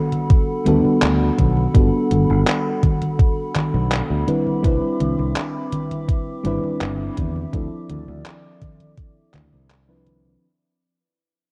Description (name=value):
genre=vaporwave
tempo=83 BPM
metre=4/4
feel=straight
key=G major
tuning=A4 = 440 Hz
part: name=mellow FM electric piano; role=accompaniment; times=0.0-10.4 s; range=F3 to B4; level=-25 LUFS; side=equal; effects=subtle chorus, analog delay
part: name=warbly tape-like pad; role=sustained chords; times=0.0-10.4 s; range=C4 to D6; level=-34 LUFS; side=equal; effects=chorus, built-in reverb
part: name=detuned 8-bit digital drum machine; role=drums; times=0.1-10.4 s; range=congas, handclaps, hi-hat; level=-27 LUFS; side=equal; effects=overdrive
part: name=electronic kick drum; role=drums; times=0.3-9.1 s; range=none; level=-19 LUFS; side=equal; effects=overdrive
part: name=fingered electric bass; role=bass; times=0.7-10.3 s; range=G1 to E2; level=-24 LUFS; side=equal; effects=none
room=light reverb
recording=worn, warbling old tape, cassette tape, warbly pitch drift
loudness=-19 LUFS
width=mono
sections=0.0-10.4 A section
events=fade-out 2.7-10.4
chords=0.0 Gmaj9; 4.3 Cmaj9; 7.5 Dm9